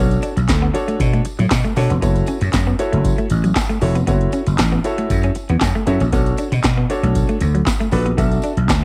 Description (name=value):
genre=early-eighties boogie funk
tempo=117 BPM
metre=4/4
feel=straight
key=B minor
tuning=A4 = 440 Hz
part: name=warm concert grand piano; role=accompaniment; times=0.0-8.5 s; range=D4 to E5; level=-25 LUFS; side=equal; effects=none
part: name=semi-hollow electric guitar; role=riff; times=0.0-8.6 s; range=F#3 to D4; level=-26 LUFS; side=equal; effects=subtle chorus
part: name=vintage slap bass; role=bass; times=0.0-8.8 s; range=E#1 to B2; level=-20 LUFS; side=equal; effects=none
part: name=electro analog drum machine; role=drums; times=0.1-8.8 s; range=handclaps, hi-hat, kick drum, snare drum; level=-23 LUFS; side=equal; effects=overdrive, cassette tape
part: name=tambourine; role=percussion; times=0.1-8.8 s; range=none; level=-42 LUFS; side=equal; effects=none
room=little or no reverb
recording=home recording on cassette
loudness=-18 LUFS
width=mono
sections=0.0-8.8 A section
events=none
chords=0.0 Bm7; 2.0 F#m7; 6.1 Bm7